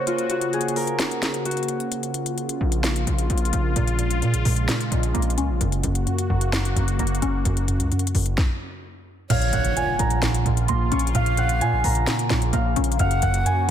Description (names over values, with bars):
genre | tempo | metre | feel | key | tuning
hip hop, trap | 130 BPM | 4/4 | half-time | Bb minor | A4 = 440 Hz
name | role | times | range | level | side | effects
Celtic harp | melody | 0.0-3.9, 9.3-13.7 s | F4 to Db6 | -26 LUFS | left 1 dB | low-pass filter, tape echo
sweeping resonant pad | sustained chords | 0.0-13.7 s | Db3 to Gb4 | -29 LUFS | equal | chorus
trap drum kit | drums | 0.1-13.6 s | crash cymbal, hi-hat, kick drum, snare drum | -27 LUFS | left 2 dB | none
distorted 808-style bass | bass | 2.6-13.7 s | Gb1 to Bb2 | -24 LUFS | equal | distortion
glassy wavetable pluck | accompaniment | 3.8-13.7 s | Gb2 to Db4 | -24 LUFS | right 1 dB | chorus, low-pass filter
breathy jazz flute | second line | 9.3-13.7 s | Db5 to Gb5 | -29 LUFS | right 8 dB | tape echo
impact | sound effects | 9.3-11.1 s | none | -32 LUFS | equal | none
room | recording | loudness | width
light reverb | dense, heavily limited modern master | -20 LUFS | side -10 dB against mid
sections
0.0-9.3 A section; 9.3-13.7 B section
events
break 0.0-3.8; kick muted 1.9-2.4; stop 8.4-9.3; impact 9.3-11.1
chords
0.0 Gb; 1.9 Bbm; 5.6 Gb; 9.3 Bbm; 13.0 Gb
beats
| 0.07 0.53 0.99 1.46 | 1.92 2.38 2.84 3.30 | 3.76 4.22 4.68 5.15 | 5.61 6.07 6.53 6.99 | 7.46 7.92 8.38 8.84 | 9.30 9.76 10.22 10.69 | 11.15 11.61 12.07 12.53 | 12.99 13.46